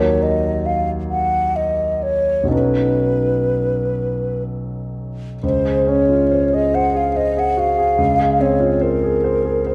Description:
classical, impressionist duo for flute and grand piano; 60-73 BPM; 3/4; rubato; Db major; A4 = 440 Hz
mellow hollow concert flute; melody; 0.0-9.7 s; Bb4 to Gb5; -20 LUFS; equal
clear grand piano; accompaniment; 0.0-9.7 s; Cb2 to C5; -21 LUFS; equal
wet recital hall reverb, RT60 1.5 s; dark, warm production; -18 LUFS; mono
0.0-5.4 A section; 5.4-9.7 B section
0.0 Ebm; 2.5 Cb9; 5.4 Dbmaj7
0.65 1.56 | 2.52 3.49 4.46 | 5.43 6.31 7.16 | 8.00 8.83 9.67

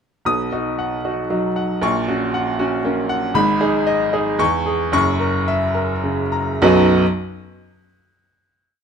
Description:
classical, virtuoso piano study; 100-119 BPM; 3/4; rubato; B major; A4 = 441 Hz
bright baby grand piano; solo; 0.3-7.0 s; F#1 to D#6; -16 LUFS; equal
moderate large studio reverb, RT60 1.2 s; close, detailed microphones; -16 LUFS; side -6 dB against mid
0.3-6.6 A section; 6.6-8.3 final chord
0.3 B; 1.8 F#/A#; 3.3 G#m; 4.4 C#m/E; 4.9 F#7; 6.6 B
| 0.26 0.79 1.31 | 1.83 2.34 2.84 | 3.35 3.87 4.39 | 4.92 5.47 6.03 | 6.62

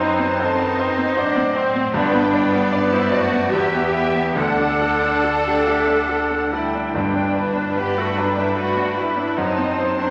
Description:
classical; 68-79 BPM; 3/4; rubato; G major; A4 = 441 Hz
clear grand piano; melody; 0.0-10.1 s; D2 to E5; -24 LUFS; equal
warm symphonic violin section; melody; 0.0-10.1 s; F#5 to A5; -39 LUFS; equal
bright small flute group; second line; 0.0-10.1 s; C5 to B5; -32 LUFS; equal
mellow cor anglais; second line; 0.0-10.1 s; A4 to D5; -29 LUFS; equal
warm clarinet; second line; 0.0-10.1 s; D#3 to D4; -30 LUFS; equal
warm symphonic violin section; second line; 0.0-10.1 s; B4 to F#5; -35 LUFS; equal
rich symphonic viola section; accompaniment; 0.0-10.1 s; B3 to D#4; -30 LUFS; equal
dark French horn section; sustained chords; 0.0-10.1 s; C4 to A4; -31 LUFS; equal
rich symphonic cello section; bass; 0.0-10.1 s; C4 to A4; -27 LUFS; equal
warm symphonic double bass section; bass; 0.0-10.1 s; D2 to A2; -34 LUFS; equal
timpani; percussion; 1.9-8.1 s; G2 to D3; -34 LUFS; equal
wet recital hall reverb, RT60 1.7 s; -19 LUFS; mono
0.0-10.1 A section
0.0 F#dim7; 1.9 G; 3.5 Em; 4.4 D; 7.0 G; 9.4 F#dim7
0.41 1.18 | 1.95 2.71 3.51 | 4.37 5.24 6.10 | 6.95 7.78 8.58 | 9.38

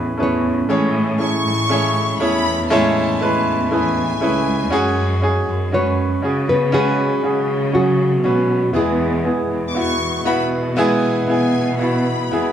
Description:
pop; 60 BPM; 4/4; straight; A major; A4 = 440 Hz
nylon-string guitar; melody; 0.0-11.8 s; F#3 to E5; -21 LUFS; equal
clear baby grand piano; accompaniment; 0.0-12.5 s; A2 to C#5; -19 LUFS; equal
picked steel-string acoustic guitar; arpeggios; 0.0-12.5 s; E2 to F#4; -27 LUFS; left 1 dB
warm studio cello section; bass; 0.0-12.5 s; C#2 to C#3; -22 LUFS; equal
warm studio violin section; second line; 1.2-12.5 s; G#5 to D6; -25 LUFS; left 2 dB
light reverb; band playing live in one room; -16 LUFS; side -9 dB against mid
0.0-12.5 A section
0.0 Amaj7; 4.7 F#sus2; 8.7 E
| 0.70 1.70 2.71 3.71 | 4.72 5.72 6.73 7.73 | 8.74 9.74 10.76 11.79

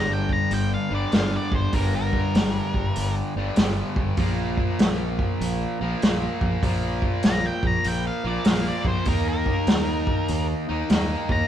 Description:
blues rock power trio and southern rock; 98 BPM; 4/4; swing 65% on 8ths; G minor; A4 = 440 Hz
octave-fuzz lead guitar; melody; 0.0-3.1, 7.3-11.5 s; Bb4 to Bb5; -29 LUFS; equal; distortion
distorted electric guitar; riff; 0.0-11.5 s; G2 to Eb4; -27 LUFS; equal; distortion
growling fingered electric bass; bass; 0.0-11.4 s; G1 to Eb2; -28 LUFS; equal; overdrive
vintage drum kit; drums; 0.3-11.4 s; hi-hat, kick drum, snare drum; -23 LUFS; equal
overdriven tonewheel organ; sustained chords; 9.1-11.5 s; Eb4 to Eb5; -41 LUFS; right 4 dB
light reverb; band playing live in one room; -21 LUFS; side -10 dB against mid
0.0-11.5 A section
0.0 Gm; 4.2 Bb5; 9.1 Eb
0.51 1.13 | 1.74 2.35 2.96 3.57 | 4.18 4.80 5.41 6.02 | 6.63 7.24 7.85 8.46 | 9.07 9.68 10.29 10.90

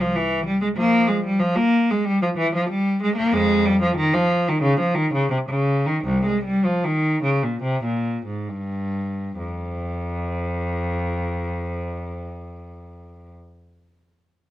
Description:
classical, baroque-style suite movement for unaccompanied cello; 63-98 BPM; 4/4; rubato; F minor; A4 = 439 Hz
rich cello; solo; 0.0-13.3 s; C2 to Bb3; -20 LUFS; equal
light reverb; dark, warm production; -20 LUFS; side -14 dB against mid
0.0-9.4 A section; 9.4-12.8 B section
slowing down 2.0-9.4
0.16 | 0.77 1.40 2.05 2.69 | 3.32 3.97 4.63 5.31 | 6.06 6.84 7.62 8.46 | 9.36 10.22 11.09 11.95

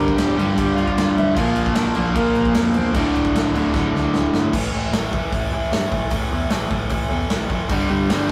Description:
punk rock; 152 BPM; 4/4; straight; A4 = 440 Hz
lead guitar through a small cranked amp; melody; 0.0-4.1 s; Bb3 to Bb5; -28 LUFS; equal; overdrive
distorted electric guitar; riff; 0.0-8.3 s; D2 to Bb3; -26 LUFS; equal; distortion
overdriven electric guitar; riff; 0.0-4.5, 7.7-8.3 s; D2 to Bb3; -22 LUFS; equal
picked electric bass; bass; 0.0-8.3 s; D1 to G2; -30 LUFS; equal
big rock drum kit; drums; 0.1-8.3 s; crash cymbal, hi-hat, kick drum, snare drum; -26 LUFS; equal
light reverb; rough rehearsal-room recording, warm saturation; -20 LUFS; mono
0.0-4.5 A section; 4.5-8.3 B section
drum fill 3.7-4.5
0.0 Gm; 1.4 Bb; 2.9 D5; 4.5 A5; 7.7 G5
0.18 0.57 0.97 | 1.36 1.76 2.16 2.55 | 2.95 3.34 3.74 4.14 | 4.53 4.93 5.32 5.72 | 6.12 6.51 6.91 7.31 | 7.70 8.10

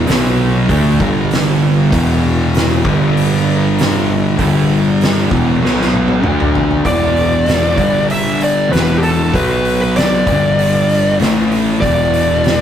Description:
stoner and doom metal; 97 BPM; 4/4; straight; E minor; A4 = 441 Hz
thick fuzz guitar; riff; 0.0-12.6 s; E2 to D4; -17 LUFS; left 4 dB; distortion
thick fuzz guitar; riff; 0.0-12.6 s; E2 to D4; -18 LUFS; right 5 dB; distortion
fuzz picked electric bass; bass; 0.0-12.6 s; E1 to D2; -18 LUFS; equal; overdrive
oversized low-tuned drum kit; drums; 0.1-12.6 s; hi-hat, kick drum, snare drum, toms; -19 LUFS; right 1 dB
fuzz lead guitar; melody; 6.9-12.6 s; G4 to E5; -15 LUFS; left 1 dB; distortion
light reverb; rough rehearsal-room recording, tube saturation; -11 LUFS; side -9 dB against mid
0.0-6.9 A section; 6.9-12.6 B section
drum fill 5.6-6.9
0.1 B5; 0.7 D5; 1.0 G5; 1.9 E5; 2.8 G5; 5.3 E5; 5.6 B5; 6.2 D5; 6.9 E5; 7.8 G5; 8.7 E5; 9.3 B5; 10.3 G5; 11.2 A5; 11.8 E5
0.08 0.69 1.31 | 1.92 2.54 3.15 3.77 | 4.39 5.00 5.62 6.24 | 6.85 7.47 8.09 8.71 | 9.33 9.95 10.57 11.19 | 11.81 12.43

